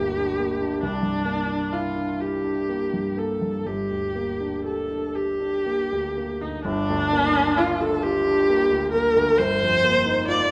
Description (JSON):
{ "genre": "classical, impressionist duo for viola and grand piano", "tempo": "39-47 BPM (dotted quarters)", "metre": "6/8", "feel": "rubato", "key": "G minor", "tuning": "A4 = 441 Hz", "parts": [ { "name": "rich viola", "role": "melody", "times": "0.0-10.5 s", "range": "D4 to D5", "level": "-25 LUFS", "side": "equal", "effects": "none" }, { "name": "warm grand piano", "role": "accompaniment", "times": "0.0-10.5 s", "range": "G1 to G4", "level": "-29 LUFS", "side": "equal", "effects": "none" } ], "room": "moderate concert hall reverb, RT60 1.8 s", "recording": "none", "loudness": "-23 LUFS", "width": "mono", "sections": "0.0-6.6 A section; 6.6-10.5 A section", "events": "none", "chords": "0.0 Gm; 0.8 C9; 3.7 Gm; 6.6 Gm7; 9.4 F9sus4/G" }